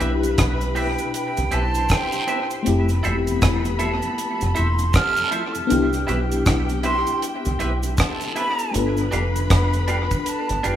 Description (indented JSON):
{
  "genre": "lovers rock reggae",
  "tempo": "79 BPM",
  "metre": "4/4",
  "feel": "swing 60% on 16ths",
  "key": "C major",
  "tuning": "A4 = 440 Hz",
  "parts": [
    { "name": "muted studio string section", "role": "second line", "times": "0.0-10.8 s", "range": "B3 to C6", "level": "-30 LUFS", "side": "left 2 dB", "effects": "none" },
    { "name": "mellow FM electric piano", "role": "accompaniment", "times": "0.0-10.8 s", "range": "B2 to A4", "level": "-26 LUFS", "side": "left 4 dB", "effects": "chorus, phaser, tremolo, tape echo" },
    { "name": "mellow tonewheel organ", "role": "accompaniment", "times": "0.0-10.8 s", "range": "F2 to F4", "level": "-34 LUFS", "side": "right 2 dB", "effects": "chorus vibrato, slow rotary speaker, tape echo" },
    { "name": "twangy electric guitar", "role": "stabs", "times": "0.0-10.8 s", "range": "C4 to F5", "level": "-30 LUFS", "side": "right 2 dB", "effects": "vibrato effect, tape echo" },
    { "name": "deep dub fingered electric bass", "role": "bass", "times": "0.0-10.8 s", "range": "E1 to C2", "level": "-22 LUFS", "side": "equal", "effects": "none" },
    { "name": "deep reggae drum kit", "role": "drums", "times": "0.0-10.8 s", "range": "hi-hat, kick drum, rim click", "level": "-23 LUFS", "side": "right 1 dB", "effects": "tape echo" },
    { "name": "cabasa and guiro", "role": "percussion", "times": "0.0-10.8 s", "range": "none", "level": "-35 LUFS", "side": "right 3 dB", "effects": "none" },
    { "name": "breathy silver concert flute", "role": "melody", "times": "0.8-10.8 s", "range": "G5 to F6", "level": "-27 LUFS", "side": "right 3 dB", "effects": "tape echo" }
  ],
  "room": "light reverb, studio reverb",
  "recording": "rough home demo mix, small room ambience, faint mains hum",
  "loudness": "-19 LUFS",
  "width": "side -11 dB against mid",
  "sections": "0.0-10.8 A section",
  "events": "none",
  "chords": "0.0 Cmaj7; 2.7 Fmaj7; 5.7 Cmaj7; 8.7 G7"
}